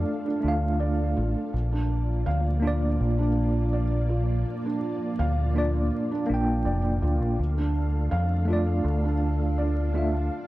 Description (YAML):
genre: trip hop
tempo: 82 BPM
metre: 4/4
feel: straight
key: unclear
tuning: A4 = 440 Hz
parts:
  - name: mellow tine electric piano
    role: accompaniment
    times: 0.0-10.2 s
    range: A3 to G5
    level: -29 LUFS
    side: right 1 dB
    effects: medium stereo tremolo, tape echo
  - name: string machine, cellos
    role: sustained chords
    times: 0.0-10.5 s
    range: Bb3 to F5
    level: -33 LUFS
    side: equal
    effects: ensemble chorus
  - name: felt-muted upright piano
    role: arpeggios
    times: 0.0-10.5 s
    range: D4 to F5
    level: -33 LUFS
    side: right 3 dB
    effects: vintage 12-bit sampler grit, tape echo
  - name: deep dub fingered electric bass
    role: bass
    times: 0.0-10.3 s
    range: F1 to F2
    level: -25 LUFS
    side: equal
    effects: none
room: light reverb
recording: dark, warm production, vinyl crackle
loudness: -23 LUFS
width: side -17 dB against mid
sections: 0.0-10.5 A section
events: none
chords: 0.0 Dm; 1.5 Bb; 7.4 Dm